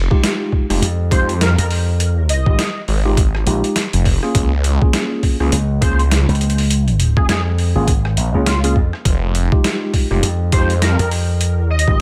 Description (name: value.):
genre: glitch hop.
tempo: 102 BPM.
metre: 4/4.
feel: swing 59% on 16ths.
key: F minor.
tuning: A4 = 440 Hz.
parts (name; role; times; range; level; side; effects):
phased detuned saw bass; bass; 0.0-11.0 s; F1 to F2; -18 LUFS; equal; phaser.
mellow tine electric piano; stabs; 0.1-12.0 s; Ab3 to Ab4; -25 LUFS; equal; sidechain pumping, tape echo.
electronic kick drum; drums; 0.1-12.0 s; none; -17 LUFS; equal; overdrive, small room reverb.
boom bap sampler-style drum kit; drums; 0.2-11.9 s; hi-hat, rim click, snare drum; -24 LUFS; equal; overdrive, small room reverb.
slap bass with an envelope filter; bass; 0.8-12.0 s; Ab1 to F2; -18 LUFS; equal; tube saturation.
sync lead; melody; 1.1-12.0 s; F4 to Eb5; -26 LUFS; equal; ensemble chorus, tape echo.
room: digital ambience.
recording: none.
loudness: -16 LUFS.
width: mono.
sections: 0.0-12.0 A section.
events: none.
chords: 0.0 Fm9; 4.3 Db6; 9.1 Fm9.